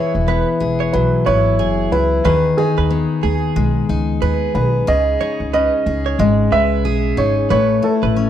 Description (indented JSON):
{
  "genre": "pop",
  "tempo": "91 BPM",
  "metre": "4/4",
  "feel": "swing 60% on 16ths",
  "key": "E major",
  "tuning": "A4 = 441 Hz",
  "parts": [
    { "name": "warm upright piano", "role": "melody", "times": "0.0-8.3 s", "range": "G#4 to E5", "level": "-18 LUFS", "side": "right 2 dB", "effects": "slapback echo" },
    { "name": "picked steel-string acoustic guitar", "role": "accompaniment", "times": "0.0-8.3 s", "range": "C#3 to B4", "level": "-19 LUFS", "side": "left 6 dB", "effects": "none" },
    { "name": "direct-recorded clean electric guitar", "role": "arpeggios", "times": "0.0-8.2 s", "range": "G#4 to C#5", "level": "-26 LUFS", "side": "right 12 dB", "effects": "lush chorus, slapback echo" },
    { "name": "upright bass", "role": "bass", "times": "0.1-8.3 s", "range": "E1 to D#2", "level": "-19 LUFS", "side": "right 1 dB", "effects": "none" }
  ],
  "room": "studio ambience",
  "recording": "dry, close 1970s-style studio recording",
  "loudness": "-14 LUFS",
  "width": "side -10 dB against mid",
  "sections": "0.0-8.3 A section",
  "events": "none",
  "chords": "0.0 Eadd9; 2.2 G#m/D#; 4.9 C#madd9; 7.5 Aadd9",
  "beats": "0.28 0.94 1.59 | 2.25 2.91 3.56 4.22 | 4.88 5.53 6.19 6.85 | 7.50 8.16"
}